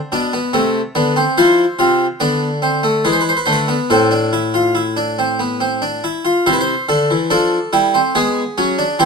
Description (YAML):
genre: classical, baroque-style 3-part fugue for harpsichord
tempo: 71 BPM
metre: 3/4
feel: straight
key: A minor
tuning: A4 = 440 Hz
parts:
  - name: harpsichord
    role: solo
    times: 0.1-9.1 s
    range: A2 to D5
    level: -13 LUFS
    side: equal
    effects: none
room: moderate studio reverb, RT60 0.8 s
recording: none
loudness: -13 LUFS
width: side -5 dB against mid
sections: 0.0-6.5 A section; 6.5-9.1 B section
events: none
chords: 0.0 E7(no3) (rootless); 0.5 Am/C; 1.4 F; 3.1 E7; 3.9 Am; 6.5 Am/C; 8.2 G#dim